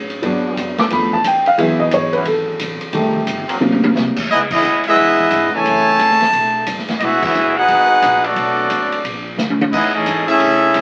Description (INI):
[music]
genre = jazz, big band swing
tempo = 177 BPM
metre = 4/4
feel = swing 64% on 8ths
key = C# minor from 4.3 s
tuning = A4 = 440 Hz
[part]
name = dark grand piano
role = accompaniment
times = 0.0-4.1 s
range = B#2 to D6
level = -18 LUFS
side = equal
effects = none
[part]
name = upright bass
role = bass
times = 0.0-10.8 s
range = E1 to A2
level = -35 LUFS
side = equal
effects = none
[part]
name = open jazz drum kit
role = drums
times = 0.1-10.8 s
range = crash cymbal, hi-hat, kick drum, ride cymbal, snare drum, toms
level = -24 LUFS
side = equal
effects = none
[part]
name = clear trombone section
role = sustained chords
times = 0.2-3.6 s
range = E3 to A#4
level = -27 LUFS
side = equal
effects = none
[part]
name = bright trumpet section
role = melody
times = 4.3-10.8 s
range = B3 to A5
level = -16 LUFS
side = equal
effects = none
[part]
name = warm trombone section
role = second line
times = 4.3-10.8 s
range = C#3 to F#4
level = -24 LUFS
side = equal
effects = none
[sound]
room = moderate club reverb, RT60 0.5 s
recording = very old 78 rpm record, vinyl crackle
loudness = -16 LUFS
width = mono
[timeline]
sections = 0.0-4.3 A section; 4.3-10.8 B section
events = grand piano solo 0.0-4.3; drum fill 3.6-3.9, 9.4-9.7; band accent 4.5, 7.2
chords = 0.2 G#m7b5; 0.9 G13; 1.6 F#m11; 2.9 F9; 3.6 G#9; 4.3 C#m9; 5.6 F#m9; 6.3 Gadd9; 7.0 Emaj9; 8.4 Bm7; 9.0 A#; 9.7 Amaj7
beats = | 0.22 0.56 0.90 1.24 | 1.57 1.91 2.25 2.59 | 2.93 3.27 3.61 3.95 | 4.29 4.63 4.97 5.31 | 5.64 5.99 6.32 6.66 | 7.00 7.34 7.68 8.02 | 8.36 8.70 9.04 9.38 | 9.72 10.06 10.40 10.74